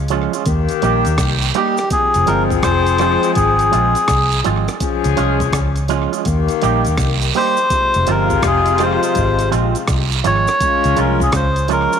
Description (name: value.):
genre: roots reggae.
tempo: 83 BPM.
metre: 4/4.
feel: swing 64% on 16ths.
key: F minor.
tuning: A4 = 440 Hz.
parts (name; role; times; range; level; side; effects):
mellow horn section; second line; 0.0-11.7 s; C3 to Ab4; -21 LUFS; left 12 dB; tape echo.
vintage muted fingered electric bass; bass; 0.0-11.9 s; F1 to Eb2; -18 LUFS; equal; none.
electric guitar with an envelope filter; accompaniment; 0.1-12.0 s; F3 to G4; -22 LUFS; right 12 dB; tape echo.
breakbeat sampler-style drum kit; drums; 0.1-12.0 s; hi-hat, kick drum, rim click; -23 LUFS; equal; tape echo.
cabasa and guiro; percussion; 0.1-12.0 s; none; -28 LUFS; right 14 dB; none.
melodica; melody; 1.6-12.0 s; G4 to Db5; -17 LUFS; equal; tape echo.
room: light reverb, small room ambience.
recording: 1960s-style stereo with parts hard left and right.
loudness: -13 LUFS.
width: side -7 dB against mid.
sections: 0.0-12.0 A section.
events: none.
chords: 0.5 Eb; 1.9 Fm; 4.8 Db; 6.3 Eb; 7.7 Fm; 10.6 Db.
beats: 0.45 1.18 | 1.90 2.63 3.35 4.08 | 4.80 5.53 6.25 6.98 | 7.70 8.43 9.15 9.88 | 10.60 11.33.